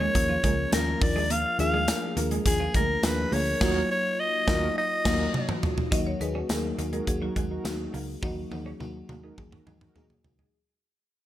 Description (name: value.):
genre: 1980s-style pop.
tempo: 104 BPM.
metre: 4/4.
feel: straight.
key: unclear.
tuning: A4 = 440 Hz.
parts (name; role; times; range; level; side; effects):
raspy alto saxophone; melody; 0.0-5.6 s; Ab4 to F5; -27 LUFS; equal; none.
FM electric piano with soft pad layer; accompaniment; 0.0-10.6 s; F3 to Db5; -31 LUFS; left 2 dB; chorus.
twelve-string electric guitar; riff; 0.0-10.5 s; F3 to Eb4; -35 LUFS; right 5 dB; lush chorus, digital delay.
vintage muted picked electric bass; bass; 0.0-10.5 s; Db2 to Eb2; -32 LUFS; equal; none.
modern studio drum kit; drums; 0.1-10.5 s; crash cymbal, hi-hat, kick drum, snare drum, tambourine, toms; -28 LUFS; equal; gated reverb.
mellow synth brass; stabs; 3.6-10.1 s; Bb3 to Bb4; -35 LUFS; right 2 dB; chorus.
marimba with medium hard mallets; second line; 5.9-8.5 s; Gb4 to Eb5; -38 LUFS; left 1 dB; digital delay.
room: light reverb, small room ambience.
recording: none.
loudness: -24 LUFS.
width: side -13 dB against mid.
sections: 0.0-5.9 A section; 5.9-10.5 B section.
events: band accent 3.6-5.9; drum fill 4.8-5.9, 8.2-10.5; fade-out 5.9-10.5.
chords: 0.0 Bbm; 1.0 Bb/Eb; 3.6 Ebmadd9; 5.9 Ebm.